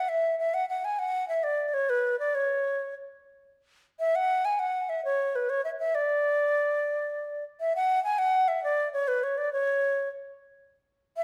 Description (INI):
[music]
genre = celtic folk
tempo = 134 BPM (dotted quarters)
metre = 12/8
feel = straight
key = unclear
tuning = A4 = 440 Hz
[part]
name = bright baroque flute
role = solo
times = 0.0-11.2 s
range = B4 to G#5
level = -28 LUFS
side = equal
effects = none
[sound]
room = moderate recital hall reverb, RT60 1.4 s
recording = none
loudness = -28 LUFS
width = mono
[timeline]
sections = 0.0-7.7 A section; 7.7-11.2 A section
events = none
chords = none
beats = 0.09 | 0.54 0.99 1.44 1.89 | 2.34 2.79 3.24 3.69 | 4.14 4.59 5.04 5.49 | 5.94 6.39 6.84 7.29 | 7.74 8.18 8.63 9.08 | 9.53 9.98 10.43 10.88